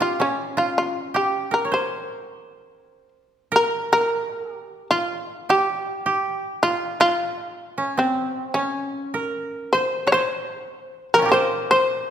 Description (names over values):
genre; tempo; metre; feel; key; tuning
japanese traditional, Japanese chamber music; 77 BPM; 2/4; uneven beats, rubato; C in sen; A4 = 439 Hz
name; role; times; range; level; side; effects
shamisen; melody; 0.0-12.1 s; C4 to Db5; -21 LUFS; left 1 dB; none
koto; second line; 0.0-12.1 s; C4 to Db5; -24 LUFS; right 3 dB; none
room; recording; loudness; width
moderate concert hall reverb, RT60 1.9 s; minimal, uncompressed stereo recording; -20 LUFS; side -9 dB against mid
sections
0.0-3.5 A section; 3.5-12.1 B section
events
none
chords
none